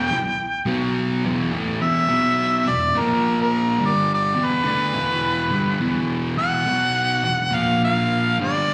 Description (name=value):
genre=rock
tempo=105 BPM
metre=4/4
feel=straight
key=E minor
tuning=A4 = 443 Hz
part: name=mellow harmonica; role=melody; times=0.0-8.7 s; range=A#4 to G5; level=-23 LUFS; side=equal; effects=overdrive, slapback echo
part: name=thick fuzz guitar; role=riff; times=0.0-8.7 s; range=E2 to D4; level=-24 LUFS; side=equal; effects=distortion, slapback echo
room=light reverb, small room reverb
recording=live gig heard through the venue's PA, recital hall reverb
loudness=-21 LUFS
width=mono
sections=0.0-1.8 A section; 1.8-8.7 B section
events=none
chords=0.0 Em; 0.7 B5; 1.2 E5; 2.1 B5; 2.7 E5; 3.0 A#5; 3.8 G5; 4.4 Em; 6.7 B5; 7.3 E5; 7.5 A#5